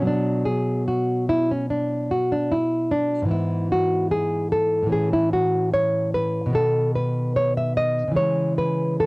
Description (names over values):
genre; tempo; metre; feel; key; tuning
classical, baroque-style dance for nylon-string guitar; 74 BPM; 4/4; rubato; E major from 3.3 s; A4 = 440 Hz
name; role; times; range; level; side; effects
nylon-string guitar; solo; 0.0-9.1 s; G#2 to E5; -20 LUFS; equal; cassette tape
room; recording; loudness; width
light reverb; home recording on cassette; -20 LUFS; side -27 dB against mid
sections
0.0-9.1 A section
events
none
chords
0.1 B5; 3.3 E/G#; 5.0 A69; 6.6 B; 8.2 C#m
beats
| 0.07 0.88 1.72 2.54 | 3.34 4.15 4.96 5.77 | 6.58 7.39 8.19 9.01